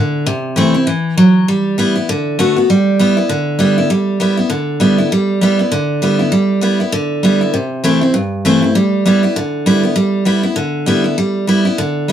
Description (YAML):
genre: rock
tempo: 198 BPM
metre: 4/4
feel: swing 58% on 8ths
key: G major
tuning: A4 = 440 Hz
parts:
  - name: picked steel-string acoustic guitar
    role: solo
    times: 0.0-12.1 s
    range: G2 to F#4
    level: -12 LUFS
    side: equal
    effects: none
room: moderate studio ambience, RT60 0.5 s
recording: band playing live in one room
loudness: -12 LUFS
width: side -10 dB against mid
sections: 0.0-2.7 A section; 2.7-12.1 B section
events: none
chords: 0.3 C6; 1.5 G6; 2.1 D6; 2.7 G6; 7.5 C6; 8.8 G6